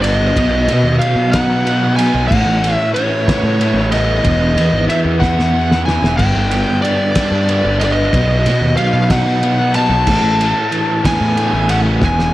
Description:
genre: psychedelic rock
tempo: 62 BPM (dotted quarters)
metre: 6/8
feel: straight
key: unclear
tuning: A4 = 439 Hz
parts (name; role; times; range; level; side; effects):
- fuzz lead guitar; melody; 0.0-12.3 s; C#5 to A5; -18 LUFS; equal; distortion, tape echo
- crunchy overdriven guitar; riff; 0.0-12.3 s; E2 to E4; -17 LUFS; equal; rotary speaker, tape echo
- fuzz picked electric bass; bass; 0.0-12.3 s; E1 to B2; -17 LUFS; equal; overdrive
- cloth-damped thuddy drum kit; drums; 0.0-12.3 s; crash cymbal, kick drum, ride cymbal, snare drum; -20 LUFS; equal; none
room: small room ambience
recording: echo-heavy mix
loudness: -12 LUFS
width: side -16 dB against mid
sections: 0.0-12.3 A section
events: drum fill 5.2-6.2, 12.0-12.3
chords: 0.4 B; 2.3 Asus2; 4.2 E5; 6.2 G; 8.1 B; 10.1 Asus2

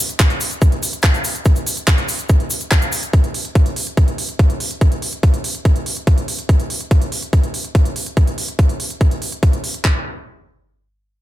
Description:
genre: trance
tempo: 143 BPM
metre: 4/4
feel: straight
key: none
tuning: none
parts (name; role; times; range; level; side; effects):
- garage drum kit; drums; 0.1-9.8 s; handclaps, hi-hat; -22 LUFS; right 2 dB; none
- cabasa; percussion; 0.1-3.1 s; none; -24 LUFS; left 3 dB; none
- garage drum kit; drums; 0.2-9.9 s; handclaps, kick drum; -15 LUFS; equal; none
room: little or no reverb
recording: none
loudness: -15 LUFS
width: side -14 dB against mid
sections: 0.0-9.8 A section; 9.8-11.2 B section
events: none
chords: none

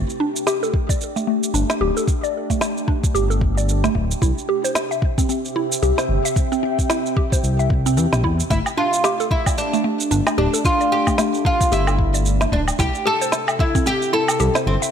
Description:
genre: organic downtempo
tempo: 112 BPM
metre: 4/4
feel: swing 59% on 16ths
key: C major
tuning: A4 = 440 Hz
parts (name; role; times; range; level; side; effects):
- warbly tape-like pad; sustained chords; 0.0-14.9 s; C3 to G5; -27 LUFS; equal; chorus, built-in reverb, phaser, sidechain pumping
- mallet-like synth pluck; arpeggios; 0.0-14.9 s; A3 to E5; -23 LUFS; equal; chorus, phaser, digital delay
- smooth gliding synth bass; bass; 0.0-14.8 s; D1 to E2; -20 LUFS; equal; none
- electronic shaker, snare drum and woodblock; drums; 0.1-14.9 s; none; -25 LUFS; right 1 dB; none
- electronic kick drum; drums; 0.7-13.8 s; none; -21 LUFS; equal; none
- oud; melody; 8.5-14.7 s; C4 to A4; -20 LUFS; equal; digital delay
room: light reverb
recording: none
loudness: -17 LUFS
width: side -8 dB against mid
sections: 0.0-14.9 A section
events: filter sweep on synth pluck 0.0-14.9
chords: 0.0 Gsus2; 4.2 C; 8.5 Gsus2; 12.8 C

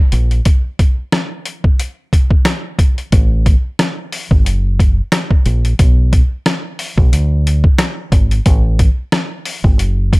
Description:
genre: hip hop, boom-bap hip-hop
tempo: 90 BPM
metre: 4/4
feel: swing 56% on 16ths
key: unclear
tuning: A4 = 439 Hz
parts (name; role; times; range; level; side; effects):
- deep dub fingered electric bass; bass; 0.1-10.2 s; F#1 to D2; -13 LUFS; equal; none
- boom bap sampler-style drum kit; drums; 0.1-10.2 s; hi-hat, kick drum, rim click, snare drum; -12 LUFS; equal; none
room: little or no reverb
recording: none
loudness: -12 LUFS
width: side -25 dB against mid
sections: 0.0-10.2 A section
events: break 0.5-3.1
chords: none

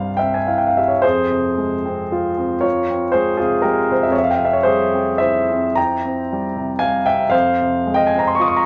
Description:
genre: classical, romantic nocturne for solo piano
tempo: 35-41 BPM (dotted quarters)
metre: 6/8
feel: rubato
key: F minor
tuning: A4 = 440 Hz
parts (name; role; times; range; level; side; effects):
- warm concert grand piano; solo; 0.0-8.7 s; C2 to Eb6; -18 LUFS; equal; none
room: moderate studio ambience, RT60 0.5 s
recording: none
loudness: -18 LUFS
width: mono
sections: 0.0-8.7 A section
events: none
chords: 0.0 C; 1.0 Fm

